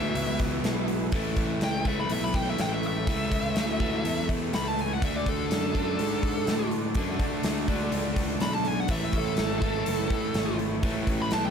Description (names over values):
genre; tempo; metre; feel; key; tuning
blues rock power trio and southern rock; 124 BPM; 4/4; straight; unclear; A4 = 440 Hz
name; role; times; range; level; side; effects
bluesy overdriven lead guitar; melody; 0.0-11.5 s; A4 to B5; -32 LUFS; equal; distortion
overdriven tonewheel organ; sustained chords; 0.0-11.5 s; A3 to E5; -42 LUFS; right 6 dB; none
overdriven electric guitar; riff; 0.0-11.5 s; E2 to D4; -30 LUFS; left 1 dB; none
fuzz picked electric bass; bass; 0.0-11.5 s; F#1 to A2; -32 LUFS; equal; overdrive
huge arena drum kit; drums; 0.2-11.4 s; hi-hat, kick drum, snare drum; -29 LUFS; equal; none
room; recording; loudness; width
little or no reverb; none; -25 LUFS; side -7 dB against mid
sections
0.0-11.5 A section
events
none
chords
0.0 E; 1.1 A; 5.0 D; 8.9 A